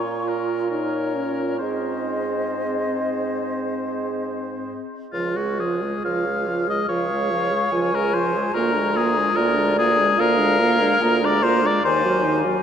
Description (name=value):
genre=classical, slow romantic movement for wind quintet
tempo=65-74 BPM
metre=4/4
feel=rubato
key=Db major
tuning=A4 = 440 Hz
part: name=hollow concert flute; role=melody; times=0.0-12.6 s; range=Db5 to Db6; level=-28 LUFS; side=left 5 dB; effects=none
part: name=clear oboe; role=second line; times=0.0-12.4 s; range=F4 to F5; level=-23 LUFS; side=left 2 dB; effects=none
part: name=warm French horn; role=accompaniment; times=0.0-12.6 s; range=Eb3 to F4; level=-27 LUFS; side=right 1 dB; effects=none
part: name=warm clarinet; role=accompaniment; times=0.0-12.6 s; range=D4 to Ab4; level=-28 LUFS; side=right 5 dB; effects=none
part: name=mellow bassoon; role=bass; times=0.0-12.6 s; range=Db2 to Bb2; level=-27 LUFS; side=right 3 dB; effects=none
room=wet cathedral reverb, RT60 6.7 s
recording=in a vast, echoing space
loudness=-19 LUFS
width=side -8 dB against mid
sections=0.0-5.1 A section; 5.1-12.6 B section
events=none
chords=0.0 Bbm; 1.6 Ab; 5.1 Db; 8.5 Bb7/D; 11.8 Ebm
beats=0.72 | 1.60 2.50 3.40 4.28 | 5.15 6.05 6.90 7.72 | 8.54 9.36 10.19 11.02 | 11.84